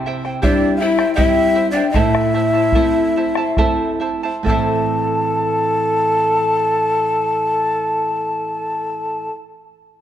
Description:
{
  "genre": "andean folk, Andean ensemble",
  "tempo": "66-82 BPM",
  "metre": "3/4",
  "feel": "straight",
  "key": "A minor pentatonic",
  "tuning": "A4 = 439 Hz",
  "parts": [
    { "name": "charango", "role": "accompaniment", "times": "0.0-9.4 s", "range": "E4 to A5", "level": "-23 LUFS", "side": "right 2 dB", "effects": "none" },
    { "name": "nylon-string guitar", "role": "accompaniment", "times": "0.0-9.4 s", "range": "A2 to E5", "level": "-23 LUFS", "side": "right 5 dB", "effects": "none" },
    { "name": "bombo", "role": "percussion", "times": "0.2-4.9 s", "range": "none", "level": "-21 LUFS", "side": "equal", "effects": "none" },
    { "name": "breathy large quena", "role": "melody", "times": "0.4-9.3 s", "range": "D5 to A5", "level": "-19 LUFS", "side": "left 1 dB", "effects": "none" },
    { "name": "breathy mellow large pan pipes", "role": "second line", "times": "0.4-9.3 s", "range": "D4 to A4", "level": "-21 LUFS", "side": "left 4 dB", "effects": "none" }
  ],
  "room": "moderate scoring stage reverb, RT60 2.0 s",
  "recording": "dark, warm production",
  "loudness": "-15 LUFS",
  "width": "side -10 dB against mid",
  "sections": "0.0-4.5 A section; 4.5-9.9 B section",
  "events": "slowing down 0.0-4.5",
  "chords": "0.0 C; 1.9 Am"
}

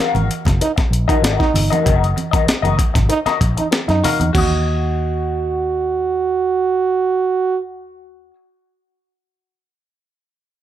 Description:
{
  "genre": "funk",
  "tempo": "96 BPM",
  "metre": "4/4",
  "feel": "straight",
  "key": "Eb minor",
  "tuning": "A4 = 442 Hz",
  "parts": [
    { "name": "electric guitar through a small old amp", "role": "accompaniment", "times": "0.0-8.4 s", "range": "Gb4 to F5", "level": "-22 LUFS", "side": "left 8 dB", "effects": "wah, spring reverb" },
    { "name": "vintage muted fingered electric bass", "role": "bass", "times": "0.1-8.3 s", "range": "Gb1 to Gb2", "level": "-19 LUFS", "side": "equal", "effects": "none" },
    { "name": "congas", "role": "percussion", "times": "0.1-4.6 s", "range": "none", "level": "-25 LUFS", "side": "right 4 dB", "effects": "none" },
    { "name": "breakbeat sampler-style drum kit", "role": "drums", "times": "0.2-4.5 s", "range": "crash cymbal, hi-hat, kick drum, snare drum", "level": "-18 LUFS", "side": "equal", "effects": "none" },
    { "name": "warm trombone", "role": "second line", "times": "0.6-7.6 s", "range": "Eb4 to Gb4", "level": "-19 LUFS", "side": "right 5 dB", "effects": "none" }
  ],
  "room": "little or no reverb",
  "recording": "none",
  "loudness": "-15 LUFS",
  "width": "side -11 dB against mid",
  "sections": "0.0-4.3 A section; 4.3-6.8 B section",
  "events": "none",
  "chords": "0.0 Gb6; 4.3 Ebm7"
}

